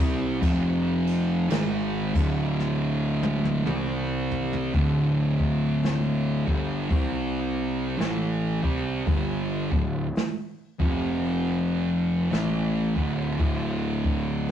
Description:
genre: stoner and doom metal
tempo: 56 BPM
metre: 4/4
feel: swing 60% on 8ths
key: D minor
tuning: A4 = 438 Hz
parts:
  - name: thick fuzz guitar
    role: riff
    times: 0.0-14.5 s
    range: D2 to C4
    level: -30 LUFS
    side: left 4 dB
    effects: distortion
  - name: thick fuzz guitar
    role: riff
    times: 0.0-14.5 s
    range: D2 to C4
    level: -26 LUFS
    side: right 3 dB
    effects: distortion
  - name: fuzz picked electric bass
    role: bass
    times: 0.0-14.5 s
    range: D1 to C2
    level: -31 LUFS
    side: left 1 dB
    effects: overdrive
  - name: jazz brush drum kit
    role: drums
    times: 0.4-14.5 s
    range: crash cymbal, hi-hat, kick drum, snare drum, toms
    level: -27 LUFS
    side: equal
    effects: none
room: light reverb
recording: rough rehearsal-room recording, tube saturation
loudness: -23 LUFS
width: side -9 dB against mid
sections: 0.0-4.7 A section; 4.7-14.5 B section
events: drum fill 2.6-4.7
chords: 0.4 F5; 1.5 D5; 3.7 C5; 4.7 D5; 6.9 C5; 8.0 D5; 10.7 F5; 12.3 D5

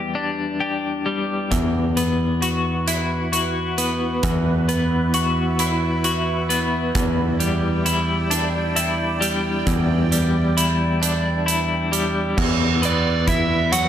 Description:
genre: post-rock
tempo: 44 BPM (dotted quarters)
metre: 6/8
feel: straight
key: E minor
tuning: A4 = 440 Hz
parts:
  - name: twelve-string electric guitar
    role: arpeggios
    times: 0.0-13.9 s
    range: E2 to G4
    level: -22 LUFS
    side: left 2 dB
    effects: tremolo, digital delay
  - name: evolving wavetable pad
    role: sustained chords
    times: 2.7-13.9 s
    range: E4 to G5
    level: -31 LUFS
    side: right 4 dB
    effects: phaser, built-in reverb
  - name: picked electric bass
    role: bass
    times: 1.5-13.9 s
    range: E2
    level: -22 LUFS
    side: right 1 dB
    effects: none
  - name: huge arena drum kit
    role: drums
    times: 1.5-13.9 s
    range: crash cymbal, hi-hat, kick drum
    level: -25 LUFS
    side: right 2 dB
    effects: none
  - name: biting overdriven guitar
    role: melody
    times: 12.9-13.9 s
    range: D5 to F#5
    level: -21 LUFS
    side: right 4 dB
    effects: digital delay
room: light reverb, small room ambience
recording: none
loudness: -18 LUFS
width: side -10 dB against mid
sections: 0.0-12.4 A section; 12.4-13.9 B section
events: none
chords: 0.0 Em7; 1.5 Bsus4/E; 7.0 Em7; 12.4 Bsus4/E

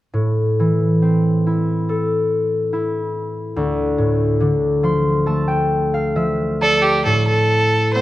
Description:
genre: celtic folk, Celtic slow air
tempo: 64-72 BPM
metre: 4/4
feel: rubato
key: A minor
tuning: A4 = 439 Hz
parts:
  - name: concert harp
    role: accompaniment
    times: 0.1-8.0 s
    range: D2 to C6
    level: -16 LUFS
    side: equal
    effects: none
  - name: clear fiddle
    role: melody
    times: 6.6-8.0 s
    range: G4 to C5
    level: -15 LUFS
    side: right 2 dB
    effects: none
room: moderate recital hall reverb, RT60 1.5 s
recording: worn, warbling old tape, cassette tape, warbly pitch drift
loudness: -16 LUFS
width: side -15 dB against mid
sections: 0.1-7.1 A section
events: harp fill 4.4-7.1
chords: 0.1 Am; 3.6 Dm; 7.1 A5

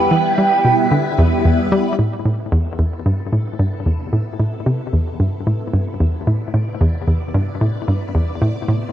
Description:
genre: ambient, sequencer-driven space music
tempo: 112 BPM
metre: 4/4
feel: straight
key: A minor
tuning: A4 = 440 Hz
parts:
  - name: expressive synth lead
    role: melody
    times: 0.0-1.5 s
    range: G5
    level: -18 LUFS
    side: right 3 dB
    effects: lush chorus, cassette tape, ping-pong delay
  - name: phased string machine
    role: sustained chords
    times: 0.0-8.9 s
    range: C3 to D5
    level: -23 LUFS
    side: equal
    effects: ensemble chorus, phaser
  - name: hollow square pluck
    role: riff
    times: 0.1-8.8 s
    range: E2 to G3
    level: -17 LUFS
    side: equal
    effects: chorus, ping-pong delay
room: moderate plate reverb, RT60 3.0 s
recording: none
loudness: -16 LUFS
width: side -11 dB against mid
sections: 0.0-2.0 A section; 2.0-8.9 B section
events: fade-in on string machine 2.0-8.9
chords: 0.0 Em; 2.0 Amadd9

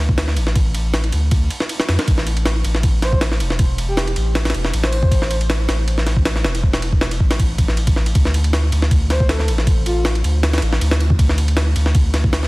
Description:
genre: drum and bass, jungle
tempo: 158 BPM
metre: 4/4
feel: swing 53% on 16ths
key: D minor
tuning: A4 = 444 Hz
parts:
  - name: saturated sub bass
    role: bass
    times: 0.0-12.5 s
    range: E1 to F2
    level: -18 LUFS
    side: equal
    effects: none
  - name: jungle sampler-style drum kit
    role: drums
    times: 0.1-12.5 s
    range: kick drum, ride cymbal, snare drum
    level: -18 LUFS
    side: equal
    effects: studio reverb
  - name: breathy flute-like synth lead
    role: melody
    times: 3.0-5.4, 9.1-10.2 s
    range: F4 to C5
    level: -27 LUFS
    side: equal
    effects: chorus, tremolo, dub echo
room: little or no reverb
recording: dense, heavily limited modern master, vinyl crackle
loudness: -15 LUFS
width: side -22 dB against mid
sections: 0.0-12.5 A section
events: none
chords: 0.0 D5; 2.1 A5; 8.2 D5

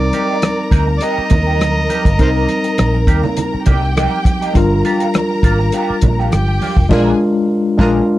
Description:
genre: lush 1970s-style soul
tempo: 102 BPM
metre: 4/4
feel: swing 54% on 16ths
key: C minor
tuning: A4 = 440 Hz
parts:
  - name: overdriven harmonica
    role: melody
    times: 0.0-3.0 s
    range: Bb4 to Eb5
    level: -20 LUFS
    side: right 1 dB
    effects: none
  - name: warm symphonic violin section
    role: second line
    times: 0.0-8.0 s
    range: G4 to Bb5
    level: -22 LUFS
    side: left 1 dB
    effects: none
  - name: tine electric piano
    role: accompaniment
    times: 0.0-8.2 s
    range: G3 to Bb4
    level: -18 LUFS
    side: left 1 dB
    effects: medium stereo tremolo
  - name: vintage muted fingered electric bass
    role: bass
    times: 0.0-8.0 s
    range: F1 to Eb2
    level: -16 LUFS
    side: equal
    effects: none
  - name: electric guitar through a small old amp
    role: riff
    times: 0.1-8.0 s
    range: Bb3 to Bb4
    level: -22 LUFS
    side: right 3 dB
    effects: wah
  - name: warm soul drum kit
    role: drums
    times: 0.1-8.0 s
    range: crash cymbal, hi-hat, kick drum, rim click, snare drum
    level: -15 LUFS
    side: equal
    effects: none
  - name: congas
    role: percussion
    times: 0.1-6.8 s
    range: none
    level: -24 LUFS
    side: right 4 dB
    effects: none
room: light reverb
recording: dry, close 1970s-style studio recording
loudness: -12 LUFS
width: side -15 dB against mid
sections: 0.0-8.2 A section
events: band accent 6.9-8.2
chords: 0.0 Cm7; 4.6 Gm7; 6.9 Bb7

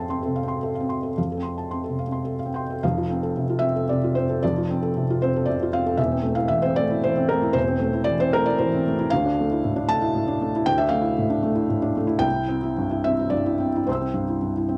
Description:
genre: neoclassical minimalist piano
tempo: 114 BPM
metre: 3/4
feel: rubato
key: unclear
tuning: A4 = 440 Hz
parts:
  - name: felt-muted upright piano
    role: solo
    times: 0.0-14.8 s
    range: E1 to E6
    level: -23 LUFS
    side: equal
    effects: none
room: little or no reverb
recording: dry, close 1970s-style studio recording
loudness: -23 LUFS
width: mono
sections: 0.0-2.8 A section; 2.8-14.8 B section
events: none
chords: 0.0 F; 6.0 Am/E; 9.1 Dmadd9; 12.2 C

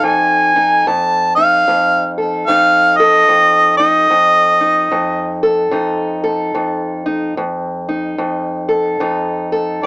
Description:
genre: acoustic country blues, solo or duo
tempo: 74 BPM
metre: 4/4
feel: swing 61% on 8ths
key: F mixolydian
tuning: A4 = 439 Hz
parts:
  - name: mellow harmonica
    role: melody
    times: 0.0-9.9 s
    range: Eb5 to A5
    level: -10 LUFS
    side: equal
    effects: plate reverb
  - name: fingerpicked old ladder-braced acoustic guitar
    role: accompaniment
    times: 0.0-9.9 s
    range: F2 to A4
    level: -17 LUFS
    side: equal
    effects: none
room: moderate booth ambience, RT60 0.2 s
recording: worn, warbling old tape, cassette tape, warbly pitch drift, small speaker sound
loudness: -11 LUFS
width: side -28 dB against mid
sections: 0.0-9.9 A section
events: none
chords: 0.0 F7

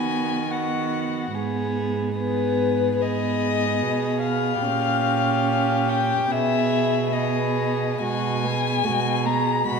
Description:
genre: classical, slow romantic movement for string quartet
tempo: 72 BPM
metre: 4/4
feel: rubato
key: unclear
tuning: A4 = 440 Hz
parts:
  - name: dark violin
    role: melody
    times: 0.0-9.8 s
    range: B4 to B5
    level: -25 LUFS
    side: left 8 dB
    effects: none
  - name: warm violin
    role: second line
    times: 0.0-9.8 s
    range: F#4 to G#4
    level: -28 LUFS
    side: left 1 dB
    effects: none
  - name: warm viola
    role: accompaniment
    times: 0.0-9.8 s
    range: G#3 to Db4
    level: -28 LUFS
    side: right 5 dB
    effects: none
  - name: warm cello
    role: bass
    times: 0.0-9.8 s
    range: G#2 to D#3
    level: -27 LUFS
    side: right 6 dB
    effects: none
room: wet recital hall reverb, RT60 1.4 s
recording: none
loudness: -20 LUFS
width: side -5 dB against mid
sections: 0.0-9.8 A section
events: none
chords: 0.0 B/D#; 1.3 G#m; 4.6 Gdim/Bb; 6.3 G#m/B; 8.0 G#m7/B

